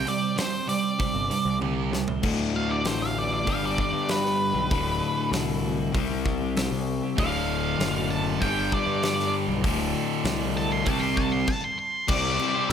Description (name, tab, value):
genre	quiet-loud alternative rock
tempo	97 BPM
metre	4/4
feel	straight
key	D mixolydian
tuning	A4 = 441 Hz
part	octave-fuzz lead guitar	melody	0.0-12.7 s	B4 to C6	-28 LUFS	right 1 dB	distortion, analog delay
part	twelve-string electric guitar	arpeggios	0.0-7.2 s	D2 to C5	-33 LUFS	right 4 dB	wide subtle chorus
part	overdriven electric guitar	riff	0.0-2.2, 7.2-11.5 s	D2 to C4	-30 LUFS	right 8 dB	none
part	fuzz picked electric bass	bass	0.0-12.7 s	D1 to G2	-30 LUFS	equal	overdrive
part	big rock drum kit	drums	0.1-12.7 s	crash cymbal, hi-hat, kick drum, snare drum, toms	-31 LUFS	equal	none
part	overdriven semi-hollow guitar	riff	2.2-12.7 s	D2 to C5	-28 LUFS	left 7 dB	none
room	light reverb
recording	none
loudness	-23 LUFS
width	side -8 dB against mid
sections	0.0-2.2 A section; 2.2-12.1 B section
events	drum fill 1.6-2.2; lead electric guitar solo 2.2-12.1; stop 11.5-12.1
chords	0.0 Csus2; 2.2 D; 3.5 G; 4.7 D; 5.9 C; 7.2 D; 8.4 G5; 9.6 D5; 10.9 C5; 12.1 Cadd9